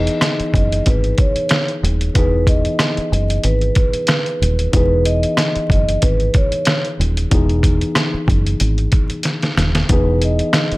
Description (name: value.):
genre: hip hop, boom-bap hip-hop.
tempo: 93 BPM.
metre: 4/4.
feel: swing 55% on 16ths.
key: E major.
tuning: A4 = 439 Hz.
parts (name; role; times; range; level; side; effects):
vibraphone with soft mallets; melody; 0.0-10.8 s; B4 to D#5; -21 LUFS; right 1 dB; high-pass filter, low-pass filter, digital delay.
tine electric piano; accompaniment; 0.0-10.8 s; E3 to G#4; -23 LUFS; left 2 dB; cassette tape, high-pass filter, low-pass filter.
deep dub fingered electric bass; bass; 0.0-10.8 s; D#1 to G#1; -17 LUFS; equal; none.
trip hop sampler-style drum kit; drums; 0.1-10.8 s; hi-hat, kick drum, rim click, snare drum; -17 LUFS; equal; none.
room: little or no reverb.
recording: vinyl crackle.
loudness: -14 LUFS.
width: side -21 dB against mid.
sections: 0.0-10.8 A section.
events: drum fill 9.2-9.9.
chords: 0.0 Emaj7.